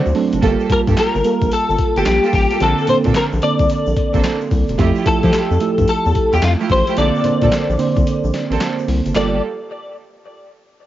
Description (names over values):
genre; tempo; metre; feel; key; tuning
R&B, new jack swing; 110 BPM; 4/4; swing 64% on 16ths; G dorian; A4 = 441 Hz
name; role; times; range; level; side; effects
direct-recorded clean electric guitar; melody; 0.0-9.4 s; F4 to D5; -19 LUFS; left 3 dB; ensemble chorus, cassette tape
mellow FM electric piano; accompaniment; 0.0-9.4 s; D3 to C5; -19 LUFS; right 5 dB; chorus, cassette tape
round analog bass; bass; 0.1-9.4 s; E1 to F3; -18 LUFS; left 1 dB; none
tube shaker; percussion; 0.1-9.4 s; none; -46 LUFS; left 10 dB; none
boom bap sampler-style drum kit; drums; 0.2-9.3 s; handclaps, hi-hat, kick drum, snare drum, tambourine; -21 LUFS; left 1 dB; cassette tape
clear studio string section; stabs; 0.4-9.4 s; A3 to A4; -25 LUFS; right 6 dB; cassette tape
room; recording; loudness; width
light reverb; home recording on cassette, nothing above 7.5 kHz; -14 LUFS; side -13 dB against mid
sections
0.4-9.2 A section; 9.2-10.9 B section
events
break 0.0-0.4, 8.1-9.2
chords
0.4 Gm9; 2.6 Bbmaj9; 4.8 Fmaj9; 7.0 Bbmaj9; 9.2 Gm9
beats
| 0.42 0.97 1.51 2.06 | 2.61 3.15 3.70 4.24 | 4.79 5.33 5.88 6.42 | 6.97 7.51 8.06 8.61 | 9.15